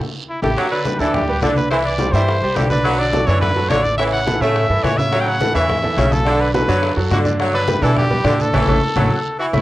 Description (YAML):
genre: latin, salsa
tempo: 211 BPM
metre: 4/4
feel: straight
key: unclear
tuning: A4 = 440 Hz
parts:
  - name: bright trumpet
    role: melody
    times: 0.3-9.6 s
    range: E4 to G5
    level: -21 LUFS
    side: equal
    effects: cassette tape
  - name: bright baby grand piano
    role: accompaniment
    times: 0.4-9.6 s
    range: C#3 to E5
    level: -22 LUFS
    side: right 3 dB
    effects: cassette tape
  - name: upright bass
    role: bass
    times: 0.4-9.6 s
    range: A1 to B2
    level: -21 LUFS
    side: equal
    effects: none
  - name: bongos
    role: percussion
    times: 0.4-9.6 s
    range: none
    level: -27 LUFS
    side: left 6 dB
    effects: none
  - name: congas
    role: percussion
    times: 0.4-9.6 s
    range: none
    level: -24 LUFS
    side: equal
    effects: none
  - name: guiro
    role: percussion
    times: 0.4-9.6 s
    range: none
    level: -36 LUFS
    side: right 6 dB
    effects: none
  - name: edgy saxophone section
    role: second line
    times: 0.6-9.5 s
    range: C#3 to A3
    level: -22 LUFS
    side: equal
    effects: cassette tape
room: light reverb, small room ambience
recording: home recording on cassette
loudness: -14 LUFS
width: side -16 dB against mid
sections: 0.6-9.6 A section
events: band accent 0.0-0.6, 8.5-9.6; drum fill 0.1-0.6, 9.0-9.6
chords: 0.0 A5; 0.6 G; 1.7 C; 2.8 Bm7; 4.0 A; 5.1 Aadd9; 6.3 Bm7; 7.4 G; 8.5 A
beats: 0.00 0.29 | 0.57 0.86 1.14 1.43 | 1.71 1.99 2.28 2.56 | 2.85 3.13 3.42 3.70 | 3.99 4.27 4.55 4.84 | 5.12 5.41 5.69 5.98 | 6.26 6.55 6.83 7.12 | 7.40 7.68 7.97 8.25 | 8.54 8.82 9.11 9.39